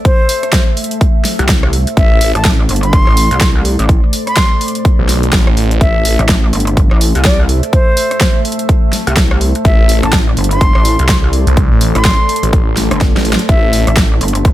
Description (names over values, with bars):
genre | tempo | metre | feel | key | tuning
bass house | 125 BPM | 4/4 | swing 59% on 16ths | A minor | A4 = 440 Hz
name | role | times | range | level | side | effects
deep dark ambient pad | sustained chords | 0.0-14.5 s | A3 to E5 | -21 LUFS | left 1 dB | chorus, built-in reverb, sidechain pumping
silver concert flute | melody | 0.1-14.0 s | C5 to C6 | -18 LUFS | left 1 dB | digital delay
big-room dance drum kit | drums | 0.1-14.5 s | hi-hat, rim click, snare drum | -17 LUFS | equal | overdrive
electronic kick drum | drums | 0.1-14.5 s | none | -11 LUFS | equal | overdrive
pulsing pluck wobble bass | bass | 1.4-14.5 s | G1 to C2 | -14 LUFS | equal | chorus, overdrive, sidechain pumping
phased detuned saw bass | bass | 2.0-6.2, 9.6-13.8 s | A1 to C2 | -13 LUFS | equal | phaser, tube saturation, sidechain pumping
room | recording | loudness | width
little or no reverb | none | -9 LUFS | side -14 dB against mid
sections
0.0-14.5 A section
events
drum fill 13.0-13.5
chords
0.0 Am